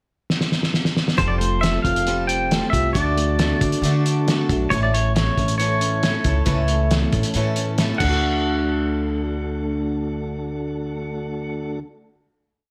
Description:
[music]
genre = folk rock and heartland rock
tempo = 136 BPM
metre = 4/4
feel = straight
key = D major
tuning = A4 = 440 Hz
[part]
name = cloth-damped thuddy drum kit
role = drums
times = 0.3-8.1 s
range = crash cymbal, hi-hat, kick drum, snare drum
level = -25 LUFS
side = equal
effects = none
[part]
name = pedal steel guitar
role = melody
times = 1.2-11.8 s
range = C5 to G5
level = -27 LUFS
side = equal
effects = none
[part]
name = picked swing-style acoustic guitar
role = accompaniment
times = 1.2-11.9 s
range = A2 to A4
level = -30 LUFS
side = equal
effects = none
[part]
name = mellow tonewheel organ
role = sustained chords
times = 1.2-11.8 s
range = A3 to A4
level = -35 LUFS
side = equal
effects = none
[part]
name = mellow electric guitar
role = riff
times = 1.2-11.9 s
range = A2 to G4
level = -29 LUFS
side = equal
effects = none
[part]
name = upright bass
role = bass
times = 1.2-11.8 s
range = F1 to D3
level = -26 LUFS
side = equal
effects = none
[sound]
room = light reverb, small room ambience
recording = none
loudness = -21 LUFS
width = mono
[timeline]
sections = 0.0-1.2 pickup bar; 1.2-8.2 pre-chorus; 8.2-11.8 final hit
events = drum fill 0.3-1.2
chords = 0.0 N.C.; 1.2 Fadd9; 3.0 D; 4.7 A; 8.0 D

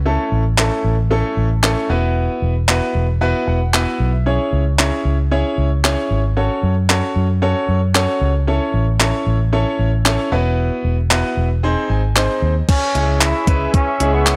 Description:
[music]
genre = dance-pop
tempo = 114 BPM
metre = 4/4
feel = straight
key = C# minor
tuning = A4 = 442 Hz
[part]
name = vintage muted fingered electric bass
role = bass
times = 0.0-14.4 s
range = E1 to F#2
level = -20 LUFS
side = equal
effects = sidechain pumping
[part]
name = clear grand piano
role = accompaniment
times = 0.1-14.4 s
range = G#3 to G#5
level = -22 LUFS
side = equal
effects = sidechain pumping
[part]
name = clean 12-bit digital drum machine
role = drums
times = 0.6-14.4 s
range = crash cymbal, handclaps, hi-hat, kick drum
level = -19 LUFS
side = equal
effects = overdrive
[part]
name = brilliant trombone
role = melody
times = 12.7-14.4 s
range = B3 to E4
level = -22 LUFS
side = equal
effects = none
[part]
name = warm analog pad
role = sustained chords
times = 12.7-14.4 s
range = G#4 to C#6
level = -26 LUFS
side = equal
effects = chorus, sidechain pumping
[sound]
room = little or no reverb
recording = dry, gritty hardware recording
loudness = -17 LUFS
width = mono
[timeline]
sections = 0.0-12.7 A section; 12.7-14.4 B section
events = grand piano fill 3.2-4.3, 11.6-12.7; kick muted 11.6-12.7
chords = 0.1 A; 1.9 Esus2; 4.3 C#m; 6.4 F#m; 8.5 A; 10.3 Esus2; 11.6 G#; 12.7 C#m

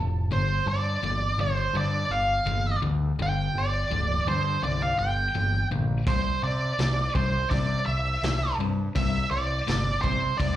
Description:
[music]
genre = classic rock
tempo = 83 BPM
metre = 4/4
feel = straight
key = unclear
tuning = A4 = 439 Hz
[part]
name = crunchy overdriven guitar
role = riff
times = 0.0-10.6 s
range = D2 to A3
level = -31 LUFS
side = left 5 dB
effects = slapback echo
[part]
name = growling picked electric bass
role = bass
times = 0.0-10.6 s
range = D1 to C3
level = -28 LUFS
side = equal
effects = overdrive
[part]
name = octave-fuzz lead guitar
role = melody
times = 0.3-10.5 s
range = C5 to G5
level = -27 LUFS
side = right 1 dB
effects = distortion, slapback echo
[part]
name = cranked stack guitar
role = riff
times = 6.1-10.6 s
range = C3 to A3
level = -34 LUFS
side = right 5 dB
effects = overdrive, slapback echo
[part]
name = vintage drum kit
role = drums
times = 6.1-10.6 s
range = hi-hat, kick drum, snare drum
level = -30 LUFS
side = equal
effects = none
[sound]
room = small room ambience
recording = live gig heard through the venue's PA, club reverb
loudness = -23 LUFS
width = side -12 dB against mid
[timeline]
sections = 0.0-10.6 A section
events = none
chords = 0.3 G5; 6.1 C

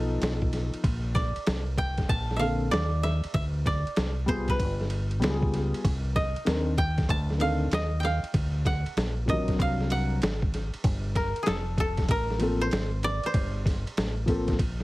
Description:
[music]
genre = hip hop, jazz-hop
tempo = 96 BPM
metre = 4/4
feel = swing 65% on 16ths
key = unclear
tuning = A4 = 440 Hz
[part]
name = koto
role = melody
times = 0.0-14.8 s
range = Ab4 to A5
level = -31 LUFS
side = right 1 dB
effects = none
[part]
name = dark concert grand piano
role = accompaniment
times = 0.0-14.5 s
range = D3 to Bb4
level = -29 LUFS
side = left 2 dB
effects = none
[part]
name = deep dub fingered electric bass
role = bass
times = 0.0-14.8 s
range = F1 to Eb2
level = -29 LUFS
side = equal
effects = none
[part]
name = trip hop sampler-style drum kit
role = drums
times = 0.2-14.8 s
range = hi-hat, kick drum, ride cymbal, snare drum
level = -29 LUFS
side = equal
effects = none
[sound]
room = little or no reverb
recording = heavily compressed radio sound, vinyl crackle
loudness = -25 LUFS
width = side -19 dB against mid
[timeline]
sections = 0.0-14.8 A section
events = none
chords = 0.0 B7#11; 0.8 Bbmaj9; 3.3 Dm7b5; 4.6 G7b9; 5.8 Cmadd9; 8.3 D7alt; 10.8 Gm11

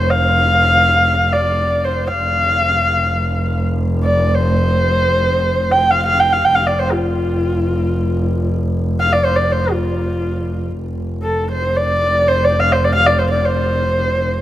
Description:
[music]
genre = mongolian traditional, Mongolian folk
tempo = free time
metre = none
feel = none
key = unclear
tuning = A4 = 438 Hz
[part]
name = warm horsehead fiddle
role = melody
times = 0.0-14.4 s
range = F4 to G5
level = -15 LUFS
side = equal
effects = none
[part]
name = rich double bass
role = drone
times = 0.0-14.4 s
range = F1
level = -18 LUFS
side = equal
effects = none
[sound]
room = moderate plate reverb, RT60 3.4 s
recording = rough home demo mix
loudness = -14 LUFS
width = side -13 dB against mid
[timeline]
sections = 0.0-10.8 A section; 10.8-14.4 A section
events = none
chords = none

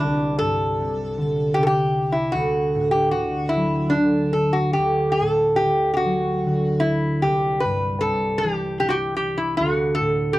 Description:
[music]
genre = celtic folk, Celtic slow air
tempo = 75 BPM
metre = 3/4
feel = uneven beats, rubato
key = unclear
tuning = A4 = 439 Hz
[part]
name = lap resonator guitar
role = melody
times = 0.0-10.4 s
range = D4 to B4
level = -21 LUFS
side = left 1 dB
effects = none
[part]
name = concert harp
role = accompaniment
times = 0.0-10.4 s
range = C2 to F#3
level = -22 LUFS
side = right 1 dB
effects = none
[sound]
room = light reverb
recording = dry, close 1970s-style studio recording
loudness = -19 LUFS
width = side -17 dB against mid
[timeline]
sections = 0.0-10.4 A section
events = none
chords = 0.0 Csus2; 2.3 D; 7.2 C; 9.6 D

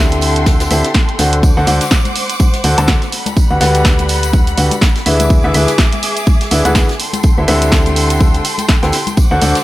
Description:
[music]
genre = piano house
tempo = 124 BPM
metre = 4/4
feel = swing 57% on 16ths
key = unclear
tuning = A4 = 440 Hz
[part]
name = dark symphonic violin section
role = sustained chords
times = 0.0-9.6 s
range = G3 to D6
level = -21 LUFS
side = equal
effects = sidechain pumping
[part]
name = clear grand piano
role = riff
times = 0.0-9.6 s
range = D3 to A5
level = -16 LUFS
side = equal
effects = sidechain pumping, tape echo
[part]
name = solid FM bass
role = bass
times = 0.0-9.5 s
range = D2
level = -16 LUFS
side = equal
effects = sidechain pumping
[part]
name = jazz brush drum kit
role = drums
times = 0.1-9.6 s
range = hi-hat, snare drum, tambourine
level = -26 LUFS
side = right 1 dB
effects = high-pass filter on hats, high-pass filter on snare, high-pass filter on perc, high-pass filter on room
[part]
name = punchy analog drum machine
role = drums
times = 0.1-9.6 s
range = hi-hat, snare drum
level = -18 LUFS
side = right 1 dB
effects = none
[part]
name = electronic kick drum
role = drums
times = 0.5-9.3 s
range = none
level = -12 LUFS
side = equal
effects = none
[part]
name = tambourine and congas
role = percussion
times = 1.4-9.6 s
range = none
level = -25 LUFS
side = left 5 dB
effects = none
[sound]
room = little or no reverb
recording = none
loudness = -10 LUFS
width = side -16 dB against mid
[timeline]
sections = 0.0-9.6 A section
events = none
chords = 0.0 Am7/D; 1.4 D7; 3.1 Gmaj7/D; 5.1 E7/D; 7.0 Am7/D

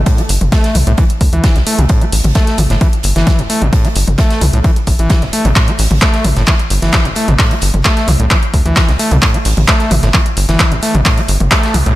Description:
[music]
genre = driving peak-time techno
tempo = 131 BPM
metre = 4/4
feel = straight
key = A minor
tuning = A4 = 441 Hz
[part]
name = tight sequencer bass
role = bass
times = 0.0-11.9 s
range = G1 to D2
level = -13 LUFS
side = equal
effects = tube saturation, sidechain pumping
[part]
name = screaming distorted acid line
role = riff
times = 0.1-11.9 s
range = A2 to A3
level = -17 LUFS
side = equal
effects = distortion, chorus, sidechain pumping, diffuse ambient delay
[part]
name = big rock drum kit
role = drums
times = 0.1-11.9 s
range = hi-hat, snare drum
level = -25 LUFS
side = right 2 dB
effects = high-pass filter on hats, high-pass filter on snare, high-pass filter on room
[part]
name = electronic kick drum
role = drums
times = 0.1-11.6 s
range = none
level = -12 LUFS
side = equal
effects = overdrive
[part]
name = punchy analog drum machine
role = drums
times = 0.1-11.9 s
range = handclaps, hi-hat, toms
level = -16 LUFS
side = equal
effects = overdrive, sidechain pumping on hats, sidechain pumping on toms
[part]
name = noise sweep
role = sound effects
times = 11.3-12.0 s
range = none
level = -27 LUFS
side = right 7 dB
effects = none
[sound]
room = light reverb, digital ambience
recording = none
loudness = -10 LUFS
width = side -16 dB against mid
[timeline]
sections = 0.0-12.0 A section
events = noise sweep 11.3-12.0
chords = 0.0 A5

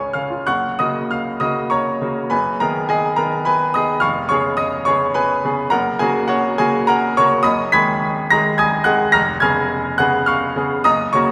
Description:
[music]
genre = classical, romantic character piece for solo piano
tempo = 87-109 BPM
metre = 3/4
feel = rubato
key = F# major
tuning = A4 = 441 Hz
[part]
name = bright grand piano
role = solo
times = 0.0-11.3 s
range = E#1 to B6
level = -18 LUFS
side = equal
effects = none
[sound]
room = wet church reverb, RT60 3.1 s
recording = recorded in a church or concert hall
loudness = -18 LUFS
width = mono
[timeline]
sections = 0.5-11.3 A section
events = none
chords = 0.5 F#; 2.3 G#m7/F#; 4.0 C#7/E#; 5.7 F#; 7.4 G#m7/F#; 9.1 C#7/E#

